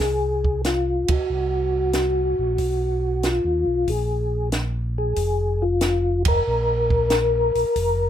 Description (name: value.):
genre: soul jazz organ trio.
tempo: 93 BPM.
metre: 4/4.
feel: swing 68% on 8ths.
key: unclear.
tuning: A4 = 442 Hz.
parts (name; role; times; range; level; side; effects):
percussive tonewheel organ; melody; 0.0-8.1 s; F4 to Bb4; -22 LUFS; left 1 dB; slow rotary speaker, chorus vibrato.
mellow tonewheel organ; bass; 0.0-8.1 s; F1 to D#2; -24 LUFS; equal; overdrive, chorus vibrato, slow rotary speaker.
compact cocktail drum kit; drums; 0.0-8.0 s; hi-hat, kick drum, ride cymbal, snare drum; -26 LUFS; right 2 dB; none.
room: light reverb.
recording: minimal, uncompressed stereo recording.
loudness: -19 LUFS.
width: side -10 dB against mid.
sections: 0.0-8.1 A section.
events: band accent 1.0-1.3, 6.1-6.5.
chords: 0.0 Fm; 1.3 Gb; 2.6 B; 3.9 Bb5.